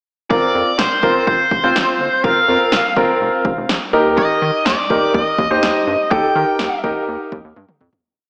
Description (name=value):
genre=synth-pop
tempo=124 BPM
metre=4/4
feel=straight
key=unclear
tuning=A4 = 440 Hz
part: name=smooth overdriven lead guitar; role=melody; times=0.3-6.8 s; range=C5 to G5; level=-20 LUFS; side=equal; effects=tape echo
part: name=clear concert grand piano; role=accompaniment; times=0.3-7.3 s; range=C4 to C5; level=-19 LUFS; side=equal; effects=none
part: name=rubbery square bass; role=bass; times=0.3-7.9 s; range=F1 to Eb3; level=-27 LUFS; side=equal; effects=none
part: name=punchy analog drum machine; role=drums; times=0.3-8.0 s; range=kick drum, snare drum, toms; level=-24 LUFS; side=equal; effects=none
room=wet lush hall reverb, RT60 1.6 s, digital ambience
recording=dreamy mix soaked in reverb, AM radio sound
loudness=-16 LUFS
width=mono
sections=0.3-8.0 verse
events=fade-out 6.1-8.0; drum fill 7.6-8.0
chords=0.3 Fsus4; 3.9 Eb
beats=| 0.31 0.79 1.27 1.76 | 2.24 2.73 3.21 3.69 | 4.18 4.66 5.14 5.63 | 6.11 6.60 7.08 7.56